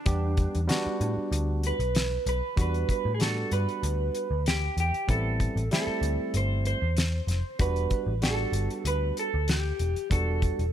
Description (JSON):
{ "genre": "straight-eighth soul blues", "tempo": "96 BPM", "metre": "4/4", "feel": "swing 53% on 16ths", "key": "E minor", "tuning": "A4 = 441 Hz", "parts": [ { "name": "electric guitar through a small old amp", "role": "melody", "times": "0.0-10.7 s", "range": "D4 to C5", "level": "-31 LUFS", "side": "right 2 dB", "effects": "wide subtle chorus" }, { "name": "barky tine electric piano", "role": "accompaniment", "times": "0.1-10.6 s", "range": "G3 to G4", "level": "-33 LUFS", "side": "right 2 dB", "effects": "none" }, { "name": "vintage muted picked electric bass", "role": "bass", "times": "0.1-10.7 s", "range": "E1 to A2", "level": "-28 LUFS", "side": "equal", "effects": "none" }, { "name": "damped 70s drum kit", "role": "drums", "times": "0.1-10.7 s", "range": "hi-hat, kick drum, snare drum", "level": "-29 LUFS", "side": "left 1 dB", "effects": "none" } ], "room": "little or no reverb", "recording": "none", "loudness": "-25 LUFS", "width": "side -10 dB against mid", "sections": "0.0-2.6 A section; 2.6-10.7 B section", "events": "clean electric guitar solo 0.0-2.6", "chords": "0.0 Em7; 5.1 Am7; 7.6 Em7" }